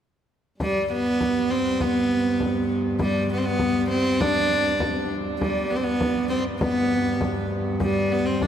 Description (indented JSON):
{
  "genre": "medieval dance",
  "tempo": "100 BPM",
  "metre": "2/4",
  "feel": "straight",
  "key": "G major",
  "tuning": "A4 = 438 Hz",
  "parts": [
    { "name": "bright viola da gamba", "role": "melody", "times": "0.6-8.5 s", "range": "G3 to D4", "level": "-22 LUFS", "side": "right 1 dB", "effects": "none" },
    { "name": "warm viola da gamba", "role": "drone", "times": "0.6-8.5 s", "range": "G2", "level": "-30 LUFS", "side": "left 1 dB", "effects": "none" },
    { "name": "frame drum", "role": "percussion", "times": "0.6-8.5 s", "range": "none", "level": "-30 LUFS", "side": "left 1 dB", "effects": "none" }
  ],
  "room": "wet cathedral reverb, RT60 7.4 s",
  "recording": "heard from further back in the room",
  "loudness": "-21 LUFS",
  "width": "side -9 dB against mid",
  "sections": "0.6-8.5 A section",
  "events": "none",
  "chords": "none",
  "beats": "| 0.60 1.20 | 1.80 2.40 | 3.00 3.60 | 4.20 4.80 | 5.40 6.00 | 6.60 7.20 | 7.80 8.40"
}